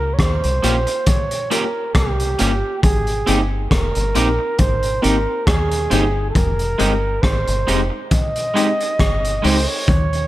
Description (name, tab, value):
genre	lovers rock reggae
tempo	68 BPM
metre	4/4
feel	swing 54% on 16ths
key	unclear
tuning	A4 = 440 Hz
part	breathy flugelhorn	melody	0.0-10.3 s	G4 to Eb5	-22 LUFS	right 2 dB	tape echo
part	deep dub fingered electric bass	bass	0.0-10.3 s	F1 to Eb2	-21 LUFS	equal	none
part	crunchy breakbeat drum kit	drums	0.2-10.3 s	hi-hat, kick drum, rim click	-19 LUFS	equal	gated reverb
part	bell-like tine electric piano	accompaniment	0.6-9.6 s	Ab3 to G4	-26 LUFS	left 4 dB	fast stereo tremolo, dub echo
part	electric guitar at the edge of break-up	stabs	0.6-9.6 s	Ab3 to G4	-25 LUFS	right 4 dB	none
room	light reverb, small room ambience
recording	none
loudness	-16 LUFS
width	side -15 dB against mid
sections	0.0-10.3 A section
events	none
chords	0.0 Eb7 (rootless); 2.8 Abmaj7; 6.4 Fm9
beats	0.19 1.07 1.95 | 2.83 3.71 4.59 5.47 | 6.36 7.24 8.12 9.00 | 9.88